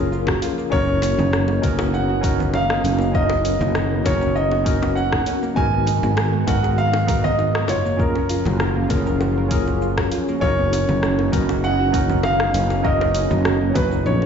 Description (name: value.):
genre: sunset chillout.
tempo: 99 BPM.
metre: 4/4.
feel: swing 53% on 16ths.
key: B lydian.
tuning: A4 = 440 Hz.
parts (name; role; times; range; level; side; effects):
warm concert grand piano; melody; 0.0-14.3 s; A#4 to G#5; -23 LUFS; right 1 dB; ping-pong delay.
barky tine electric piano; accompaniment; 0.0-14.3 s; B3 to B4; -25 LUFS; moving between left 5 dB and right 5 dB; medium stereo tremolo, auto-pan, ping-pong delay.
lush unison pad; sustained chords; 0.0-14.3 s; C#3 to F#4; -28 LUFS; right 1 dB; chorus.
soft round pluck; arpeggios; 0.0-14.3 s; G#3 to A#4; -29 LUFS; right 3 dB; chorus, ping-pong delay.
sustaining fretless electric bass; bass; 0.0-14.3 s; F#1 to A#1; -22 LUFS; equal; none.
smooth R&B drum kit; drums; 0.1-14.2 s; congas, hi-hat, rim click, shaker; -27 LUFS; right 2 dB; none.
electronic kick drum; drums; 0.3-13.9 s; none; -23 LUFS; left 1 dB; none.
bongos; percussion; 0.3-14.3 s; none; -32 LUFS; left 6 dB; none.
room: light reverb, digital ambience.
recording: played on a big sound system in a bare room, large studio reverb, nothing above 7.6 kHz.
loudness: -17 LUFS.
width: side -7 dB against mid.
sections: 0.0-14.3 A section.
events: none.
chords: 0.0 F#maj7; 0.7 Bmaj9/F#; 5.6 G#m7; 7.7 F#maj7; 10.4 Bmaj9/F#.